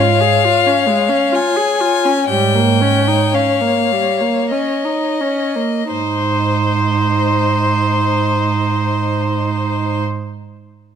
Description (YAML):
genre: classical, slow romantic movement for string quartet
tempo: 41-71 BPM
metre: 3/4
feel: rubato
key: Ab major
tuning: A4 = 440 Hz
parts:
  - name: clear violin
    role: melody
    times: 0.0-10.0 s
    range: C5 to Ab5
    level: -19 LUFS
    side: left 9 dB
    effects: none
  - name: rich violin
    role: second line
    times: 0.0-10.0 s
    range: C5 to Db5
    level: -19 LUFS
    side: left 3 dB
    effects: none
  - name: rich viola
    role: accompaniment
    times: 0.0-10.0 s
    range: G3 to Ab4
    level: -19 LUFS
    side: right 3 dB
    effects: none
  - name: rich cello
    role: bass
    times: 0.0-10.0 s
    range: Ab2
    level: -19 LUFS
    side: right 5 dB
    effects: none
room: moderate recital hall reverb, RT60 1.5 s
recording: close, detailed microphones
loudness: -13 LUFS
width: side -8 dB against mid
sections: 0.0-5.9 A section; 5.9-10.1 B section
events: slowing down 0.0-5.9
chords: 0.0 Db/Ab; 2.3 Eb7/Ab; 5.9 Ab